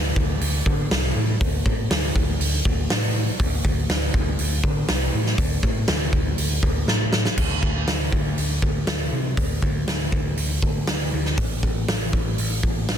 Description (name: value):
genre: hard rock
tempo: 120 BPM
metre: 4/4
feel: straight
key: unclear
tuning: A4 = 440 Hz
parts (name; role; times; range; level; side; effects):
- overdriven picked electric bass; bass; 0.0-13.0 s; A1 to D3; -24 LUFS; equal; none
- big rock drum kit; drums; 0.2-13.0 s; crash cymbal, hi-hat, kick drum, snare drum; -22 LUFS; equal; none
room: little or no reverb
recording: dense, heavily limited modern master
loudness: -20 LUFS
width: side -9 dB against mid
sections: 0.0-7.4 A section; 7.4-13.0 B section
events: drum fill 6.9-7.4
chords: none